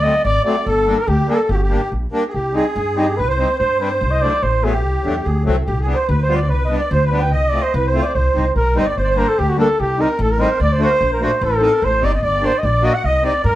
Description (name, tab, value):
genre	klezmer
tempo	145 BPM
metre	2/4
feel	straight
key	C harmonic minor, G harmonic minor from 9.0 s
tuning	A4 = 440 Hz
part	mellow cornet	melody	0.0-13.6 s	F#4 to G5	-18 LUFS	equal	none
part	musette accordion	second line	0.0-13.6 s	G4 to F#5	-25 LUFS	right 3 dB	none
part	accordion	accompaniment	0.0-13.3 s	F#3 to A4	-21 LUFS	left 1 dB	none
part	upright bass	bass	0.0-13.6 s	G1 to G2	-19 LUFS	equal	none
room	moderate studio reverb, RT60 0.5 s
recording	heard from further back in the room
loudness	-15 LUFS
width	side -14 dB against mid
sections	0.0-2.3 A section; 2.3-9.0 B section; 9.0-13.6 C section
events	speeding up 0.0-13.6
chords	0.0 D; 0.7 Gm; 2.3 Cm; 4.0 D7; 5.7 G/C; 7.3 F/C; 8.1 Cm; 9.0 Gm; 9.8 Cm; 10.6 D; 11.4 Adim; 12.2 Gm; 13.0 Cm